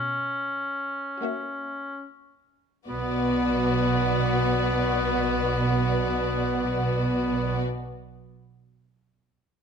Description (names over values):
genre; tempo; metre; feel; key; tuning
classical, slow romantic movement for symphony orchestra; 38 BPM; 4/4; rubato; B minor; A4 = 440 Hz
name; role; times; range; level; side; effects
warm oboe; second line; 0.0-7.6 s; B3 to C#4; -29 LUFS; left 1 dB; none
warm symphonic cello section; bass; 0.0-7.6 s; B2; -30 LUFS; right 1 dB; none
warm symphonic violin section; melody; 1.2-7.6 s; D5 to E5; -35 LUFS; left 5 dB; none
warm symphonic violin section; second line; 1.2-7.6 s; F#4; -31 LUFS; left 2 dB; none
warm symphonic viola section; accompaniment; 1.2-7.6 s; A#3 to B3; -30 LUFS; equal; none
warm symphonic double bass section; bass; 2.9-7.6 s; B1; -30 LUFS; right 4 dB; none
room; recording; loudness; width
moderate recital hall reverb, RT60 1.4 s; none; -23 LUFS; side -6 dB against mid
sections
0.0-2.9 A section; 2.9-9.1 B section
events
slowing down 0.0-2.9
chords
0.0 F#7/B; 2.9 Bm